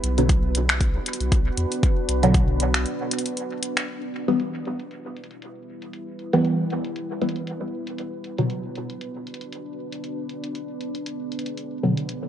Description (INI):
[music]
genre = dub techno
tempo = 117 BPM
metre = 4/4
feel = swing 56% on 16ths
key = E minor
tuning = A4 = 444 Hz
[part]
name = deep dark ambient pad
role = sustained chords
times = 0.0-12.3 s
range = B3 to B4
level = -31 LUFS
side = right 1 dB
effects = chorus, built-in reverb, sidechain pumping
[part]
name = warm sub bass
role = bass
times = 0.0-2.9 s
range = B1 to E2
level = -24 LUFS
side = equal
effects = sidechain pumping
[part]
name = deep house drum kit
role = drums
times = 0.0-12.2 s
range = finger snaps, hi-hat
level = -28 LUFS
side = left 1 dB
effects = low-pass filter on hats, low-pass filter on snare, low-pass filter on room, dub echo
[part]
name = filtered dub chord stab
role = stabs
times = 0.2-8.5, 11.8-11.9 s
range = B2 to B3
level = -23 LUFS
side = equal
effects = phaser, sidechain pumping, dub echo
[part]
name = electronic kick drum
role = drums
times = 0.3-2.5 s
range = none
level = -21 LUFS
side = equal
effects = none
[sound]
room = moderate echo chamber reverb, RT60 1.9 s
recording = nothing above 10.5 kHz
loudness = -22 LUFS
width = side -10 dB against mid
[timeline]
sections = 0.0-3.9 A section; 3.9-12.3 B section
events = break 2.9-3.9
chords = 0.0 Bm; 3.9 Em; 8.0 Bm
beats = 0.29 0.81 1.32 | 1.83 2.34 2.86 3.37 | 3.88 4.40 4.91 5.42 | 5.93 6.45 6.96 7.47 | 7.99 8.50 9.01 9.52 | 10.04 10.55 11.06 11.57 | 12.09